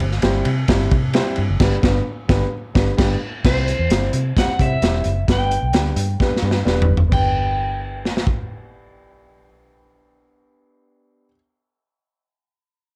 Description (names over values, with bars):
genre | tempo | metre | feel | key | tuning
uptempo 1960s-style soul | 130 BPM | 4/4 | straight | G major | A4 = 441 Hz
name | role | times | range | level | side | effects
dark concert grand piano | accompaniment | 0.0-11.3 s | G3 to C5 | -27 LUFS | equal | none
vintage muted fingered electric bass | bass | 0.0-11.3 s | E1 to C3 | -23 LUFS | equal | none
crunchy breakbeat drum kit | drums | 0.0-8.4 s | crash cymbal, hi-hat, kick drum, ride cymbal, snare drum, toms | -22 LUFS | equal | none
electric guitar through a small old amp | melody | 3.5-11.3 s | C5 to G5 | -26 LUFS | equal | spring reverb, slapback echo
room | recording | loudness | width
light reverb, small room ambience | dark, warm production, faint mains hum | -19 LUFS | mono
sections
0.0-3.4 A section; 3.4-7.1 B section; 7.1-10.8 C section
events
band accent 1.6-3.4; drum fill 6.2-7.1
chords
0.0 C; 1.6 G; 3.4 C; 5.3 G